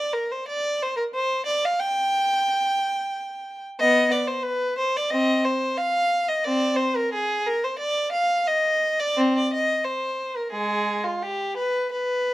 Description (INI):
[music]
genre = classical, baroque-style suite movement for unaccompanied violin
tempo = 90 BPM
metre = 4/4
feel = rubato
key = G minor, C minor from 3.8 s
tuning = A4 = 441 Hz
[part]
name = rich violin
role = solo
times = 0.0-12.3 s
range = Ab3 to G5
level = -21 LUFS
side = equal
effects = none
[sound]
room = light reverb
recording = none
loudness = -21 LUFS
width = side -16 dB against mid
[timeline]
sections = 0.0-12.3 A section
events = none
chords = none